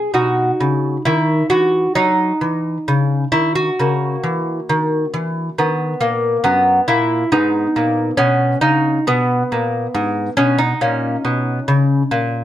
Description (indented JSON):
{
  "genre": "classical, baroque-style dance for lute",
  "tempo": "68 BPM",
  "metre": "4/4",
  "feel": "rubato",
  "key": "B major",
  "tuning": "A4 = 440 Hz",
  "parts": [
    { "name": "lute", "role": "solo", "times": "0.0-12.4 s", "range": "F#2 to G#4", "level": "-15 LUFS", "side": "equal", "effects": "none" }
  ],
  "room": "light reverb",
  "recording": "dark, warm production",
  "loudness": "-15 LUFS",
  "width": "side -12 dB against mid",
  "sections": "0.1-12.4 A section",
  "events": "none",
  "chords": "0.1 B; 3.8 F#7/C#; 5.6 B; 7.3 G#m; 10.8 Bsus2"
}